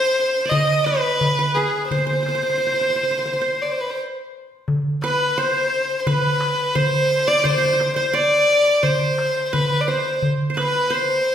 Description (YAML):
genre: Arabic maqam ensemble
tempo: 86 BPM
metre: 4/4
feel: straight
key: C maqam nahawand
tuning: A4 = 440 Hz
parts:
  - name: warm violin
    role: melody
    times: 0.0-11.3 s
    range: Ab4 to Eb5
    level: -19 LUFS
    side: equal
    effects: none
  - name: qanun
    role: second line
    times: 0.0-11.3 s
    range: Ab4 to Eb5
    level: -25 LUFS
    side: right 2 dB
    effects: none
  - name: darbuka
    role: percussion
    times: 0.2-11.3 s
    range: none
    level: -23 LUFS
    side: equal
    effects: none
room: wet recital hall reverb, RT60 1.3 s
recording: recorded in a church or concert hall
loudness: -17 LUFS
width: side -9 dB against mid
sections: 0.0-4.7 A section; 4.7-11.3 B section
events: stop 3.3-4.7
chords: none